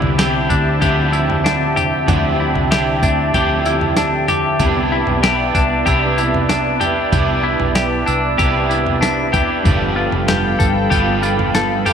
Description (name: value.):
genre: dream pop.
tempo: 95 BPM.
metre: 4/4.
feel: straight.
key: C major.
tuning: A4 = 441 Hz.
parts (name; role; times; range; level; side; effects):
electric guitar at the edge of break-up; accompaniment; 0.0-11.9 s; G2 to A4; -20 LUFS; right 3 dB; harmonic tremolo, ensemble chorus.
warbly tape-like pad; sustained chords; 0.0-11.9 s; G4 to B5; -21 LUFS; equal; chorus, built-in reverb.
semi-hollow electric guitar; arpeggios; 0.0-11.9 s; G2 to A4; -19 LUFS; left 4 dB; wide subtle chorus, ping-pong delay.
vintage muted fingered electric bass; bass; 0.0-11.9 s; F1 to D2; -23 LUFS; equal; none.
clean 12-bit digital drum machine; drums; 0.0-11.9 s; kick drum, snare drum, tambourine, toms; -20 LUFS; equal; none.
glockenspiel with hard plastic mallets; texture; 4.3-11.9 s; D6 to B6; -29 LUFS; right 4 dB; ping-pong delay.
room: moderate lush hall reverb, RT60 2.7 s.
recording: bright 1980s-style digital production.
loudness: -14 LUFS.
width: side -7 dB against mid.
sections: 0.0-11.9 A section.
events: none.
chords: 0.0 Dm11; 4.6 Cmaj9; 9.7 G9.